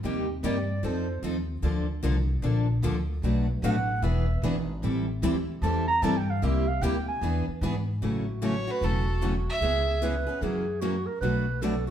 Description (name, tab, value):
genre	acoustic string swing (jazz manouche)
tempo	150 BPM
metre	4/4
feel	swing 64% on 8ths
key	A major from 8.0 s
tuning	A4 = 441 Hz
part	picked steel-string acoustic guitar	accompaniment	0.0-11.9 s	B2 to A4	-33 LUFS	left 4 dB	none
part	picked steel-string acoustic guitar	accompaniment	0.0-11.7 s	B2 to B4	-31 LUFS	right 2 dB	none
part	upright bass	bass	0.0-11.8 s	E1 to G#2	-28 LUFS	equal	none
part	breathy clarinet	second line	0.4-1.2, 3.6-11.9 s	F#4 to Bb5	-31 LUFS	right 3 dB	none
part	warm violin	melody	8.4-10.0 s	A4 to E5	-30 LUFS	right 2 dB	none
room	wet studio reverb, RT60 1.0 s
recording	heard from further back in the room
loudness	-25 LUFS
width	side -10 dB against mid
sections	0.0-8.0 A section; 8.0-11.9 B section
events	clarinet solo 0.0-8.0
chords	0.0 Cm7; 0.8 F7; 1.6 Bbmaj7; 3.2 Bm7; 4.0 E7; 4.8 Am7; 6.4 C7; 7.2 E7; 8.0 A6; 9.6 C#m7; 10.4 F#7; 11.2 Bm7